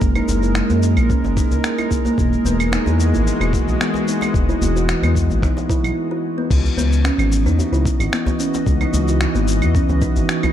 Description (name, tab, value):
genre	organic downtempo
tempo	111 BPM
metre	4/4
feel	straight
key	C# dorian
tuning	A4 = 440 Hz
part	bowed-like drone	sustained chords	0.0-10.5 s	E3 to D#5	-24 LUFS	right 1 dB	built-in reverb, sidechain pumping
part	kalimba	arpeggios	0.0-10.5 s	A#3 to F#4	-21 LUFS	equal	vintage 12-bit sampler grit, ping-pong delay
part	smooth gliding synth bass	bass	0.0-10.2 s	E1 to F#2	-19 LUFS	equal	none
part	dusty soul sampler-style drum kit	drums	0.0-10.5 s	claves, crash cymbal, finger snaps, shaker	-26 LUFS	equal	small room ambience
part	electronic kick drum	drums	0.0-10.1 s	none	-20 LUFS	equal	small room ambience
part	djembe	percussion	0.3-10.5 s	none	-26 LUFS	right 1 dB	none
room	light reverb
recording	dark, warm production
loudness	-15 LUFS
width	side -10 dB against mid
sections	0.0-6.5 A section; 6.5-10.5 B section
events	break 6.0-6.5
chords	0.0 F#9; 2.2 Emaj9; 6.5 C#m11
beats	| 0.02 0.56 1.10 1.64 | 2.18 2.72 3.26 3.80 | 4.34 4.88 5.42 5.96 | 6.50 7.04 7.58 8.13 | 8.67 9.21 9.75 10.29